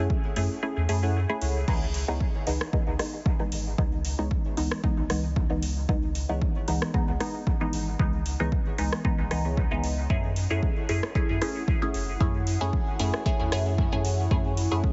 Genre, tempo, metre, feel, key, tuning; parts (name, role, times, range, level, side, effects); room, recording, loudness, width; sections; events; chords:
dub techno; 114 BPM; 4/4; swing 54% on 16ths; C# minor; A4 = 438 Hz
wavetable chord stab; riff; 0.0-14.9 s; B3 to F#5; -42 LUFS; equal; sidechain pumping, dub echo
filtered dub chord stab; stabs; 0.0-14.9 s; E3 to G#4; -33 LUFS; equal; phaser, sidechain pumping, dub echo
soft dub sub bass; bass; 0.0-14.8 s; F#1 to F#2; -31 LUFS; equal; sidechain pumping
electronic kick drum; drums; 0.1-14.9 s; -29 LUFS; equal; overdrive, small room ambience
deep house drum kit; drums; 0.4-14.7 s; crash cymbal, hi-hat, rim click; -38 LUFS; equal; overdrive, small room ambience, dub echo
deep dark ambient pad; sustained chords; 11.6-14.9 s; E4 to F#5; -38 LUFS; equal; chorus, built-in reverb, sidechain pumping
digital ambience; heavily compressed radio sound, multiband compression, nothing above 7.7 kHz; -27 LUFS; mono
0.0-1.7 A section; 1.7-14.9 A section
kick drops out 0.6-1.7
0.0 F#m7; 1.7 C#m7; 10.1 F#m7